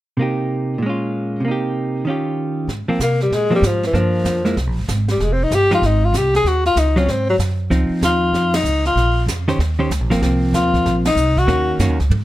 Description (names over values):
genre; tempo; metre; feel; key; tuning
jazz, small-group swing and bop; 191 BPM; 4/4; swing 63% on 8ths; Ab major; A4 = 440 Hz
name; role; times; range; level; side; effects
hollow-body jazz guitar; accompaniment; 0.2-12.0 s; Bb2 to C5; -19 LUFS; right 1 dB; none
upright bass; bass; 2.7-12.2 s; F1 to C3; -19 LUFS; right 1 dB; none
jazz brush drum kit; drums; 2.7-12.2 s; brushed snare drum, hi-hat, kick drum, ride cymbal, snare drum, toms; -28 LUFS; right 1 dB; none
breathy tenor saxophone; melody; 3.0-11.8 s; Fb3 to Ab4; -17 LUFS; left 2 dB; plate reverb
room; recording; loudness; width
light reverb; none; -15 LUFS; side -15 dB against mid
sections
0.2-2.7 A section; 2.7-12.2 B section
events
band accent 8.5, 11.0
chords
0.2 Cm7; 0.8 Bbm7; 1.4 Cm7; 2.1 Eb9; 2.7 Ab69; 3.9 Gm7; 4.6 Abadd9; 5.2 Fm9; 6.5 Ebm7; 7.1 Ab7; 7.7 Dbmaj9; 9.0 Bbm; 9.6 Eb13; 10.2 Bbsus24; 11.5 Ebm7